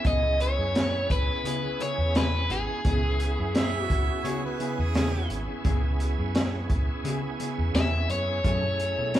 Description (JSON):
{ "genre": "straight-eighth soul blues", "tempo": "86 BPM", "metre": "4/4", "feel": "swing 55% on 16ths", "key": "C# minor", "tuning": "A4 = 440 Hz", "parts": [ { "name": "overdriven electric guitar", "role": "melody", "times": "0.0-9.2 s", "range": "G#4 to E5", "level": "-28 LUFS", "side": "left 1 dB", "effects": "none" }, { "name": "bright tonewheel organ", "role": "accompaniment", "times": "0.0-9.2 s", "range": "A3 to G#4", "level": "-34 LUFS", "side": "right 4 dB", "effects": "slow rotary speaker, overdrive, chorus vibrato" }, { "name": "mellow electric guitar", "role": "stabs", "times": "0.0-9.2 s", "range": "C#3 to A4", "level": "-36 LUFS", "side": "left 3 dB", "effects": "tape echo" }, { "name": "vintage muted fingered electric bass", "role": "bass", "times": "0.0-9.2 s", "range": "G#1 to C#3", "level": "-28 LUFS", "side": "equal", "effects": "none" }, { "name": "crunchy breakbeat drum kit", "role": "drums", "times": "0.0-9.2 s", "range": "hi-hat, kick drum, snare drum", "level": "-28 LUFS", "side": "equal", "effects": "none" }, { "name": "bright harmonica", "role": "second line", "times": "3.6-5.3 s", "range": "G#4 to E5", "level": "-33 LUFS", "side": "right 5 dB", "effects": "overdrive" } ], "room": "moderate large studio reverb, RT60 1.2 s", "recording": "band playing live in one room", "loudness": "-24 LUFS", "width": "side -12 dB against mid", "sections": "0.0-9.2 A section", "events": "none", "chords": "0.0 C#m7; 8.4 F#m7" }